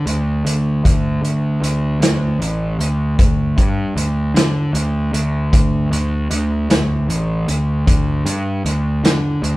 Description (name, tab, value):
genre	psychedelic rock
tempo	51 BPM (dotted quarters)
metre	6/8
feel	straight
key	unclear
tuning	A4 = 439 Hz
part	fuzz picked electric bass	bass	0.0-9.6 s	A1 to D3	-17 LUFS	equal	overdrive
part	vintage drum kit	drums	0.1-9.6 s	hi-hat, kick drum, snare drum	-17 LUFS	equal	none
room	moderate studio reverb, RT60 0.6 s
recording	band playing live in one room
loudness	-15 LUFS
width	side -18 dB against mid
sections	0.0-9.6 A section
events	none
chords	none